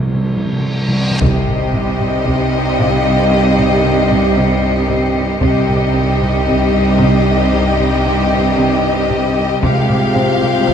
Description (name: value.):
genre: cinematic, suspense film score.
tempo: 57 BPM.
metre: 4/4.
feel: straight.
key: C phrygian.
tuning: A4 = 440 Hz.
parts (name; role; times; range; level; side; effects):
bowed-like drone; drone; 0.0-10.7 s; C2; -22 LUFS; equal; none.
timpani; percussion; 0.0-2.7 s; C3; -17 LUFS; right 1 dB; none.
reverse cymbal and impact; sound effects; 0.2-5.4 s; none; -25 LUFS; equal; none.
rich studio violin section; melody; 1.2-10.7 s; Eb5 to F5; -20 LUFS; left 4 dB; none.
rich symphonic violin section; second line; 1.2-10.7 s; G4; -21 LUFS; left 2 dB; none.
rich studio viola section; accompaniment; 1.2-10.7 s; G3 to Ab3; -21 LUFS; right 2 dB; none.
mellow French horn section; sustained chords; 1.2-10.7 s; C4 to F4; -22 LUFS; left 4 dB; none.
warm trombone section; sustained chords; 1.2-10.7 s; G2 to G4; -23 LUFS; right 2 dB; none.
clear studio cello section; riff; 1.2-10.7 s; C3 to C4; -22 LUFS; right 1 dB; none.
bright studio double bass section; bass; 1.2-10.7 s; C2; -22 LUFS; right 2 dB; none.
rich studio cello section; bass; 1.2-10.7 s; C3; -21 LUFS; right 2 dB; none.
taiko ensemble; drums; 1.2-10.7 s; none; -23 LUFS; left 1 dB; none.
rich studio violin section; texture; 1.2-10.7 s; F6 to Db7; -29 LUFS; left 2 dB; none.
large celesta; texture; 2.8-10.7 s; C5 to F5; -26 LUFS; left 9 dB; none.
room: wet concert hall reverb, RT60 2.4 s.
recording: dark, warm production.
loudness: -12 LUFS.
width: side -8 dB against mid.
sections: 0.0-1.2 A section; 1.2-10.7 B section.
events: break 0.0-1.2; timpani fill 0.0-1.2; drum fill 0.2-1.2; reverse cymbal 0.2-1.2; impact 1.2-5.4.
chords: 0.0 N.C.; 1.2 Cm; 9.6 Fmadd9/C.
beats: 0.15 | 1.20 2.26 3.31 4.36 | 5.41 6.47 7.52 8.57 | 9.62 10.68.